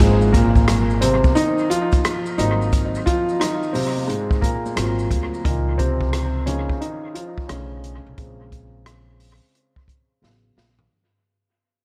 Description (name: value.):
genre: hip hop, jazz-hop.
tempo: 88 BPM.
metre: 4/4.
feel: swing 65% on 16ths.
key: Ab major.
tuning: A4 = 440 Hz.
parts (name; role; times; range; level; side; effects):
dark concert grand piano; accompaniment; 0.0-10.7 s; Ab2 to F4; -23 LUFS; equal; low-pass filter, dub echo.
upright bass; bass; 0.0-10.9 s; Ab1 to D2; -24 LUFS; equal; none.
open jazz drum kit; drums; 0.0-10.9 s; hi-hat, kick drum, rim click, snare drum, toms; -24 LUFS; equal; dub echo.
maracas and congas; percussion; 0.0-5.4 s; none; -37 LUFS; equal; dub echo.
room: light reverb, small room reverb.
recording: echo-heavy mix.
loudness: -20 LUFS.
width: mono.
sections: 0.0-10.9 A section.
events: fade-out 0.0-10.9; grand piano solo 0.0-10.9; filter sweep on grand piano 0.0-10.9; drum fill 10.2-10.9.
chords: 0.0 Ab69; 2.4 Ab7; 4.8 Ab13; 5.4 Db69; 7.5 Bm9; 8.2 Bbm9; 10.2 A69.